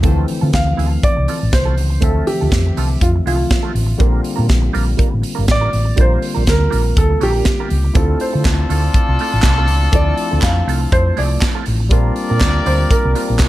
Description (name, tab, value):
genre	disco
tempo	121 BPM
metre	4/4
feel	swing 56% on 16ths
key	D minor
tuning	A4 = 438 Hz
part	barky tine electric piano	accompaniment	0.0-13.5 s	D3 to E5	-24 LUFS	left 4 dB	overdrive
part	mellow electric guitar	accompaniment	0.0-13.5 s	G3 to Bb4	-26 LUFS	right 10 dB	wah
part	fingered electric bass with an envelope filter	bass	0.0-13.5 s	G1 to D3	-16 LUFS	equal	none
part	modern studio drum kit	drums	0.0-13.5 s	hi-hat, kick drum, snare drum	-18 LUFS	equal	gated reverb
part	dark concert grand piano	melody	0.5-13.5 s	F4 to F5	-21 LUFS	right 1 dB	none
part	warm horn section	stabs	8.0-13.5 s	D4 to D5	-23 LUFS	left 2 dB	tape echo
part	group handclap	percussion	8.5-13.5 s	none	-26 LUFS	right 3 dB	none
room	small room ambience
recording	none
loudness	-13 LUFS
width	side -15 dB against mid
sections	0.0-13.5 A section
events	grand piano solo 0.0-13.5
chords	0.0 Dm7; 4.0 Bb6; 8.0 Dm7; 11.9 Bb6